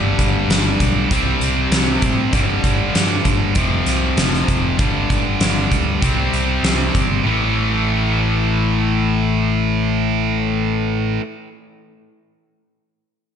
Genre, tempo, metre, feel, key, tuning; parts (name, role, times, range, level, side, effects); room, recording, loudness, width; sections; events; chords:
hard rock; 98 BPM; 4/4; straight; A minor; A4 = 438 Hz
cranked stack guitar; riff; 0.0-11.2 s; F2 to C4; -22 LUFS; left 10 dB; overdrive, slapback echo
tight distorted guitar; riff; 0.0-11.2 s; F2 to C4; -21 LUFS; right 8 dB; distortion, slapback echo
overdriven picked electric bass; bass; 0.0-11.2 s; F1 to A2; -21 LUFS; equal
huge arena drum kit; drums; 0.2-7.1 s; hi-hat, kick drum, snare drum; -19 LUFS; equal
moderate lush hall reverb, RT60 2.3 s; big arena sound, nothing above 10.4 kHz; -15 LUFS; side -8 dB against mid
0.0-7.3 A section; 7.3-9.7 B section
0.0 G; 1.1 C5; 2.3 G5; 3.6 F5; 4.8 G5; 6.0 C5; 7.3 A5